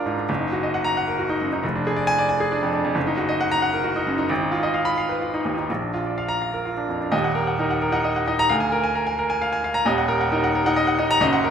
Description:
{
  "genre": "classical, virtuoso piano study",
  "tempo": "133 BPM",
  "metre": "3/4",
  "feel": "rubato",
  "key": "Eb minor",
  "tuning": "A4 = 440 Hz",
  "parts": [
    { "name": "clear baby grand piano", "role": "solo", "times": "0.0-11.5 s", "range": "Eb1 to Cb6", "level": "-20 LUFS", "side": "equal", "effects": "none" }
  ],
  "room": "moderate recital hall reverb, RT60 1.4 s",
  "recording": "minimal, uncompressed stereo recording",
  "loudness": "-20 LUFS",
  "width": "side -7 dB against mid",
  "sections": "0.0-7.1 A section; 7.1-11.5 B section",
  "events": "none",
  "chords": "0.3 Ebm/Gb; 1.6 Ddim/F; 3.0 Ebm/Gb; 4.3 Fm7b5/Ab; 5.7 Bb; 7.1 Ebm; 8.5 Bb7/D; 9.9 Ebm",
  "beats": "| 0.29 0.74 1.18 | 1.63 2.07 2.51 | 2.96 3.40 3.85 | 4.29 4.75 5.21 | 5.69 6.18 6.66 | 7.13 7.59 8.05 | 8.50 8.95 9.41 | 9.86 10.31 10.76 | 11.21"
}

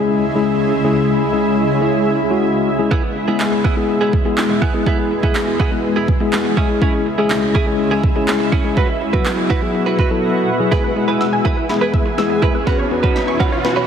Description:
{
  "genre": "dance-pop",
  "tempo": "123 BPM",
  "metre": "4/4",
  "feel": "straight",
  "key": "E major",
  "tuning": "A4 = 440 Hz",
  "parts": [
    { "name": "mellow tine electric piano", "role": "accompaniment", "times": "0.0-13.9 s", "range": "F#3 to B4", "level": "-18 LUFS", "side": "left 3 dB", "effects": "fast stereo tremolo, sidechain pumping" },
    { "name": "shimmering ambient pad", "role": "sustained chords", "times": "0.0-13.9 s", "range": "C#2 to B4", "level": "-20 LUFS", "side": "right 1 dB", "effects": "chorus, built-in reverb, sidechain pumping" },
    { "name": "direct-recorded clean electric guitar", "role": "riff", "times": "2.9-13.9 s", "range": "B3 to B4", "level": "-22 LUFS", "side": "right 6 dB", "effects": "lush chorus" },
    { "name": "deep house drum kit", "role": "drums", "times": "2.9-13.8 s", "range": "handclaps, kick drum, snare drum", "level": "-18 LUFS", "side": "right 1 dB", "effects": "none" },
    { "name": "wide unison pluck", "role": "arpeggios", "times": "10.7-13.9 s", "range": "E4 to B6", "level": "-23 LUFS", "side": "equal", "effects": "sidechain pumping, digital delay" },
    { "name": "riser", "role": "sound effects", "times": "11.7-13.9 s", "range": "none", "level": "-26 LUFS", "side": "right 1 dB", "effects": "none" }
  ],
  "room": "moderate lush hall reverb, RT60 2.1 s",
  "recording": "heavily compressed radio sound",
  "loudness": "-14 LUFS",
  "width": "side -8 dB against mid",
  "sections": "0.0-10.7 A section; 10.7-13.9 B section",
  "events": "silent gap 10.2-10.7; build-up 10.7-13.9; drum fill 10.7-13.9; riser 11.7-13.9; tine electric piano fill 13.6",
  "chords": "0.0 C#m; 2.9 E; 6.6 C#m; 8.8 Bsus4; 10.7 E; 12.7 Bsus2",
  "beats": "0.48 | 0.96 1.45 1.94 2.43 | 2.92 3.40 3.89 4.38 | 4.87 5.35 5.84 6.33 | 6.82 7.30 7.79 8.28 | 8.77 9.26 9.74 10.23 | 10.72 11.21 11.70 12.18 | 12.67 13.16 13.65"
}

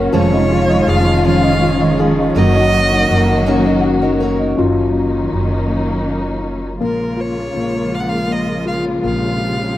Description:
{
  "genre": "six-eight pop ballad",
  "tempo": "54 BPM (dotted quarters)",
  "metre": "6/8",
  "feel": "straight",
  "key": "Bb minor",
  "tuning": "A4 = 440 Hz",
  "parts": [
    { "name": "warm baby grand piano", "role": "accompaniment", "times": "0.0-9.8 s", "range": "F3 to Db5", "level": "-18 LUFS", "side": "left 3 dB", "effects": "none" },
    { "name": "warm studio string section", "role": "sustained chords", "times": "0.0-9.8 s", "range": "Bb2 to Gb4", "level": "-18 LUFS", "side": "equal", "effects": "none" },
    { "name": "picked steel-string acoustic guitar", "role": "arpeggios", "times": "0.0-4.6 s", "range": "F2 to Db5", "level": "-20 LUFS", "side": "right 4 dB", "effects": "slapback echo" },
    { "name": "upright bass", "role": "bass", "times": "0.0-9.7 s", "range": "F1 to Bb1", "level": "-20 LUFS", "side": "right 1 dB", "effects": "none" },
    { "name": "rich violin", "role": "melody", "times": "0.2-9.8 s", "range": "Bb4 to Gb5", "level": "-21 LUFS", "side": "right 1 dB", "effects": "slapback echo" }
  ],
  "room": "little or no reverb",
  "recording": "recorded outdoors, with no room sound",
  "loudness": "-13 LUFS",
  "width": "side -14 dB against mid",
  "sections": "0.0-4.6 A section; 4.6-6.8 B section; 6.8-9.8 C section",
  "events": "grand piano solo 4.6-6.8",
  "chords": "0.1 Dbadd9/F; 2.4 Ebm7/Gb; 6.8 Bbm7",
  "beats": "| 0.13 1.24 | 2.35 3.47 | 4.58 5.69 | 6.80 7.92 | 9.03"
}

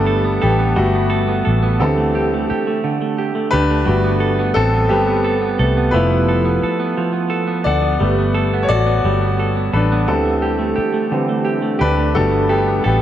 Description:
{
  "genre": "R&B",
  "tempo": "58 BPM (dotted quarters)",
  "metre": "6/8",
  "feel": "straight",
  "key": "G major",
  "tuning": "A4 = 440 Hz",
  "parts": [
    { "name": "semi-hollow electric guitar", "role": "second line", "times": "0.0-13.0 s", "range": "D3 to A4", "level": "-20 LUFS", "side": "right 4 dB", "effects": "spring reverb, diffuse ambient delay" },
    { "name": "bright concert grand piano", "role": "accompaniment", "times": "0.0-13.0 s", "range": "E3 to F#5", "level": "-18 LUFS", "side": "left 2 dB", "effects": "none" },
    { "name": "vintage muted fingered electric bass", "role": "bass", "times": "0.0-13.0 s", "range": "F1 to D2", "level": "-19 LUFS", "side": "equal", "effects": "none" }
  ],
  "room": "moderate plate reverb, RT60 3.5 s",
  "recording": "dreamy mix soaked in reverb",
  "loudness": "-14 LUFS",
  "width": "side -11 dB against mid",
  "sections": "0.0-13.0 A section",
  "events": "grand piano solo 0.0-13.0",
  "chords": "0.0 Gmaj9; 1.8 D7sus4; 3.9 Gmaj9; 5.9 Fmaj9#11; 8.0 Gmaj9; 10.1 D7sus4; 12.1 Gmaj9",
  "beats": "0.76 | 1.79 2.83 | 3.86 4.90 | 5.93 6.96 | 8.00 9.03 | 10.07 11.10 | 12.14"
}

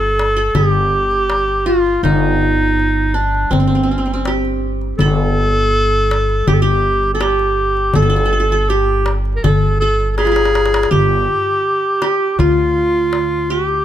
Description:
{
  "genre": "Turkish makam ensemble",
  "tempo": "81 BPM",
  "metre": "4/4",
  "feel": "straight",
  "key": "G makam ussak",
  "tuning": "A4 = 440 Hz",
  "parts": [
    { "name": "breathy clarinet", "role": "melody", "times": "0.0-13.8 s", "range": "C4 to Bb4", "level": "-16 LUFS", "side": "equal", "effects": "none" },
    { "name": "qanun", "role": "second line", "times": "0.0-13.8 s", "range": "C4 to A4-30c", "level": "-21 LUFS", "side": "right 1 dB", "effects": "none" },
    { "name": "upright bass", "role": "bass", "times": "0.0-13.8 s", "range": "G1 to D2", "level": "-19 LUFS", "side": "equal", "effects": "none" },
    { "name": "darbuka", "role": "percussion", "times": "0.2-13.8 s", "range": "none", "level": "-20 LUFS", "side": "left 3 dB", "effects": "none" }
  ],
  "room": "light reverb",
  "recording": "close, detailed microphones",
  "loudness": "-13 LUFS",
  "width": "side -11 dB against mid",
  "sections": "0.0-10.9 A section; 10.9-13.8 B section",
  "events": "drum fill 10.2-10.9",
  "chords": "none",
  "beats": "0.55 1.29 | 2.03 2.77 3.52 4.25 | 5.00 5.74 6.48 7.22 | 7.96 8.69 9.43 10.17 | 10.91 11.65 12.38 13.12"
}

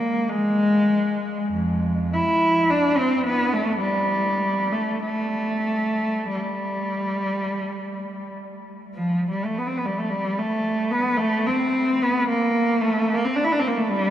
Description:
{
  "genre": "classical, free, expressive piece for unaccompanied cello",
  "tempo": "39-57 BPM",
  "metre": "3/4",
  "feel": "rubato",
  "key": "unclear",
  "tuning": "A4 = 439 Hz",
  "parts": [
    { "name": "rich cello", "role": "solo", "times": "0.0-14.1 s", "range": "F2 to E4", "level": "-20 LUFS", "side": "equal", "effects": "none" }
  ],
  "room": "wet cathedral reverb, RT60 6.5 s",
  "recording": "none",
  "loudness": "-20 LUFS",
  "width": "side -11 dB against mid",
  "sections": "0.0-9.0 A section; 9.0-14.1 B section",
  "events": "none",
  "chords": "none",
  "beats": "0.30 | 1.54 2.72 3.83 | 5.05 6.34 7.59 | 8.95 10.11 11.20 | 12.29 13.35"
}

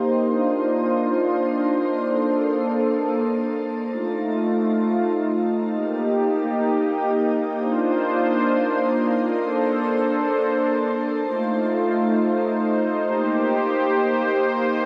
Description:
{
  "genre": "hip hop",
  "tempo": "free time",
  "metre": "none",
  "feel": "none",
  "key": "unclear",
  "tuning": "A4 = 442 Hz",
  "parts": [
    { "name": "warm analog pad", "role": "solo", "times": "0.0-14.9 s", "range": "A3 to C5", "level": "-22 LUFS", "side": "equal", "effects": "chorus, low-pass filter, delay" }
  ],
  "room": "moderate shimmer reverb, RT60 5.8 s",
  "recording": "none",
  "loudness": "-22 LUFS",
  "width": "mono",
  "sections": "0.0-11.2 A section; 11.2-14.9 B section",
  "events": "filter sweep on analog synth pad 0.0-11.2",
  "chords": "0.3 Cm11; 2.1 Bbmaj9; 3.9 F7; 5.7 Eb6; 7.6 Cm11; 9.4 Bbmaj9; 11.2 F7; 13.1 Eb6",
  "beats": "free time"
}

